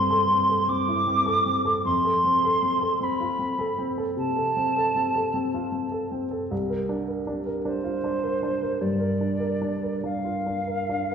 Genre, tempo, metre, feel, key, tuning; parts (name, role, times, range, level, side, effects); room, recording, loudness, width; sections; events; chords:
classical, impressionist duo for flute and grand piano; 52 BPM (dotted quarters); 12/8; rubato; A4 = 440 Hz
mellow hollow silver concert flute; melody; 0.0-11.1 s; C5 to D6; -24 LUFS; right 1 dB
warm baby grand piano; accompaniment; 0.0-11.1 s; C2 to Bb4; -26 LUFS; equal
wet recital hall reverb, RT60 1.5 s; heard from further back in the room; -22 LUFS; side -7 dB against mid
0.0-11.1 A section
0.0 C69; 1.9 F; 6.5 C9sus4